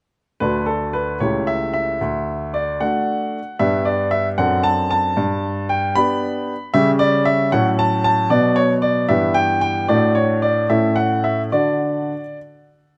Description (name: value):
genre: classical-period piano sonatina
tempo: 76 BPM (dotted quarters)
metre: 6/8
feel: straight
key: D major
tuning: A4 = 441 Hz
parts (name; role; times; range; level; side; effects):
- clear baby grand piano; solo; 0.4-12.4 s; C#2 to B5; -19 LUFS; equal; none
room: moderate recital hall reverb, RT60 1.5 s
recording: close, detailed microphones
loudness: -19 LUFS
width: mono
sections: 0.4-13.0 A section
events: none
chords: 0.4 D; 1.2 A7/C#; 2.0 D; 3.6 G; 4.4 D7/F#; 5.2 G; 6.7 C#dim; 7.5 F#m/A; 8.3 B5; 9.1 Em/G; 9.9 D/A; 10.7 A; 11.5 D